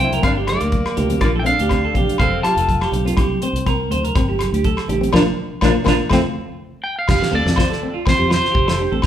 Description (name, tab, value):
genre	highlife guitar band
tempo	122 BPM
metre	4/4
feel	swing 55% on 16ths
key	F major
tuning	A4 = 440 Hz
part	electric guitar at the edge of break-up	melody	0.0-2.9, 6.8-9.1 s	C5 to A5	-21 LUFS	equal	none
part	growling alto saxophone	second line	0.0-6.2 s	Bb3 to F4	-25 LUFS	left 2 dB	none
part	fingerpicked plugged-in old ladder-braced acoustic guitar	accompaniment	0.0-9.1 s	F3 to F4	-24 LUFS	left 4 dB	none
part	clean electric guitar	arpeggios	0.0-9.1 s	C4 to C5	-23 LUFS	right 5 dB	none
part	fingered electric bass	bass	0.0-9.1 s	F1 to F2	-22 LUFS	equal	none
part	damped 70s drum kit	drums	0.1-9.1 s	crash cymbal, hi-hat, kick drum, rim click, snare drum	-21 LUFS	equal	none
part	congas	percussion	0.1-6.2 s	none	-28 LUFS	equal	none
part	agogo bells	percussion	0.2-9.1 s	none	-29 LUFS	left 3 dB	none
room	moderate large studio reverb, RT60 1.1 s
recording	band playing live in one room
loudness	-15 LUFS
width	side -10 dB against mid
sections	0.0-7.1 A section; 7.1-9.1 B section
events	band accent 5.1-7.1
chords	0.2 Gm; 1.2 Bb; 2.2 F; 3.2 Csus2; 4.2 Gm; 5.1 Bb; 6.1 F; 7.1 Fadd9